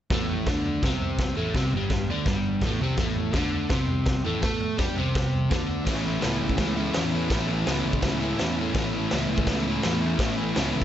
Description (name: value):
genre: garage rock duo or trio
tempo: 166 BPM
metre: 4/4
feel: straight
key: A mixolydian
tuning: A4 = 440 Hz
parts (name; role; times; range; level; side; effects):
- crunchy overdriven guitar; riff; 0.1-10.8 s; G2 to A4; -26 LUFS; equal; none
- fuzz picked electric bass; bass; 0.1-10.8 s; G1 to A2; -30 LUFS; equal; overdrive
- raw garage drum kit; drums; 0.1-10.8 s; crash cymbal, hi-hat, kick drum, snare drum, toms; -28 LUFS; equal; none
room: small room reverb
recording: nothing above 7.9 kHz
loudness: -23 LUFS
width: side -11 dB against mid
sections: 0.1-5.9 A section; 5.9-10.8 B section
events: none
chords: 0.1 Gsus24; 5.9 A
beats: | 0.10 0.46 0.82 1.19 | 1.55 1.91 2.27 2.63 | 2.99 3.35 3.71 4.08 | 4.44 4.80 5.16 5.52 | 5.88 6.24 6.60 6.96 | 7.32 7.68 8.04 8.39 | 8.76 9.11 9.47 9.83 | 10.19 10.55